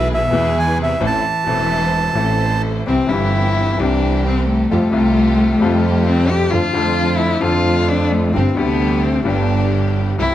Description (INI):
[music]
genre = tango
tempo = 131 BPM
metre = 4/4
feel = rubato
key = C major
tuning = A4 = 439 Hz
[part]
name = bandoneon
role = melody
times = 0.0-2.6 s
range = E5 to A5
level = -18 LUFS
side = right 3 dB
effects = none
[part]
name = warm cello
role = second line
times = 0.0-10.3 s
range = B2 to G4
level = -19 LUFS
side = left 3 dB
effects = none
[part]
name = bright upright piano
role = accompaniment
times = 0.0-10.3 s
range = E1 to A4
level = -21 LUFS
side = left 5 dB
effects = none
[part]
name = rich studio string section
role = stabs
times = 0.0-10.3 s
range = G3 to C5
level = -26 LUFS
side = right 2 dB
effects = none
[part]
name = rich double bass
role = bass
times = 0.0-10.3 s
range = E1 to F2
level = -19 LUFS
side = right 2 dB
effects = none
[sound]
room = moderate large studio reverb, RT60 0.7 s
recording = none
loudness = -14 LUFS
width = side -12 dB against mid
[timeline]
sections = 0.0-2.9 A section; 2.9-10.3 B section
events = cello solo 2.9-10.3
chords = 0.0 E; 1.0 Am; 2.9 C; 4.7 Fadd9; 6.5 Dm/F; 8.3 Gsus4; 9.3 G